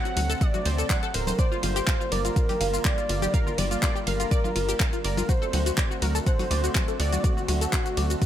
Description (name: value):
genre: progressive house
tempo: 123 BPM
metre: 4/4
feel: straight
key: unclear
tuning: A4 = 440 Hz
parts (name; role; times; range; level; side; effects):
- warm velvety synth lead; melody; 0.0-8.3 s; F#4 to F#5; -31 LUFS; equal; chorus, dub echo
- lush unison pad; sustained chords; 0.0-8.3 s; C3 to F#4; -34 LUFS; right 1 dB; chorus, sidechain pumping
- tight sequenced synth; arpeggios; 0.1-8.3 s; F4 to F#5; -32 LUFS; left 2 dB; chorus, phaser, sidechain pumping, dub echo
- deep house drum kit; drums; 0.1-8.3 s; handclaps, hi-hat, ride cymbal, shaker; -31 LUFS; equal; overdrive
- tight sequencer bass; bass; 0.2-8.2 s; D1 to D2; -27 LUFS; equal; tube saturation, sidechain pumping
- congas; percussion; 0.2-8.1 s; none; -36 LUFS; left 3 dB; sidechain pumping on perc
- electronic kick drum; drums; 0.4-8.3 s; none; -24 LUFS; equal; none
room: light reverb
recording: none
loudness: -22 LUFS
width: side -11 dB against mid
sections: 0.0-8.3 A section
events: none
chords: 0.0 D7; 1.4 Gm7; 5.3 D7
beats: 0.41 0.90 | 1.39 1.87 2.36 2.85 | 3.34 3.83 4.31 4.80 | 5.29 5.78 6.26 6.75 | 7.24 7.73 8.22